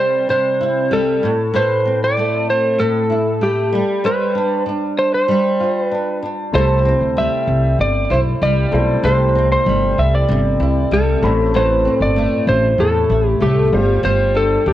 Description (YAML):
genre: pop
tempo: 96 BPM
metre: 4/4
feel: straight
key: C major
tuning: A4 = 445 Hz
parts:
  - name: electric slide guitar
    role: melody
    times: 0.0-14.7 s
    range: G4 to E5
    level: -17 LUFS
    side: equal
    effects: plate reverb, ping-pong delay
  - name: flamenco guitar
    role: accompaniment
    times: 0.0-14.7 s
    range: A2 to C5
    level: -20 LUFS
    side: equal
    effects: double-tracked left and right, plate reverb
  - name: warm concert grand piano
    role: accompaniment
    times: 6.5-14.7 s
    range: G3 to B5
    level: -24 LUFS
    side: left 3 dB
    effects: plate reverb
  - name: upright bass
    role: bass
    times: 6.5-14.7 s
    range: G1 to E2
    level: -17 LUFS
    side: equal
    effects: none
room: moderate studio reverb, RT60 0.6 s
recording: worn, warbling old tape, cassette tape, warbly pitch drift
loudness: -14 LUFS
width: side -13 dB against mid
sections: 0.0-14.7 A section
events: none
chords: 0.0 C6; 1.2 Amadd9; 3.7 G7sus4; 6.5 C6; 11.2 Amadd9; 13.7 G7sus4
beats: 0.29 0.92 | 1.54 2.17 2.79 3.42 | 4.04 4.67 5.29 5.92 | 6.54 7.17 7.79 8.41 | 9.04 9.66 10.29 10.91 | 11.54 12.16 12.79 13.41 | 14.04 14.66